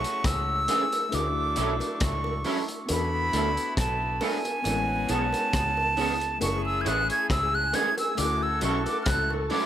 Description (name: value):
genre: lovers rock reggae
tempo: 68 BPM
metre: 4/4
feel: swing 54% on 16ths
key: F# minor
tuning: A4 = 439 Hz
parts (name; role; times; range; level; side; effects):
- breathy silver concert flute; melody; 0.0-9.7 s; G#5 to G#6; -27 LUFS; right 1 dB; tape echo
- bright horn section; second line; 0.0-9.5 s; F#3 to A4; -38 LUFS; left 2 dB; none
- mellow tine electric piano; accompaniment; 0.0-9.7 s; G#3 to A4; -35 LUFS; left 4 dB; medium stereo tremolo
- vintage muted fingered electric bass; bass; 0.0-9.5 s; F#1 to E2; -31 LUFS; left 1 dB; none
- crunchy breakbeat drum kit; drums; 0.0-9.7 s; hi-hat, kick drum, rim click; -31 LUFS; left 1 dB; gated reverb
- electric guitar through a small old amp; stabs; 0.7-9.7 s; E3 to A4; -32 LUFS; right 3 dB; ensemble chorus, tape echo
- bongos; percussion; 0.7-9.7 s; none; -37 LUFS; right 3 dB; tape echo
- soft string machine; second line; 6.7-9.7 s; G#4 to A5; -36 LUFS; left 1 dB; ensemble chorus, tape echo
room: moderate spring reverb, RT60 2.6 s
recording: none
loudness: -24 LUFS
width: side -11 dB against mid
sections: 0.0-9.7 A section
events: none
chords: 0.0 F#m9; 1.1 Dmaj9; 2.9 E7sus4; 4.7 Amaj9; 6.4 F#m9; 8.2 Dmaj9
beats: 0.24 1.12 2.00 | 2.89 3.77 4.65 5.53 | 6.42 7.30 8.18 9.06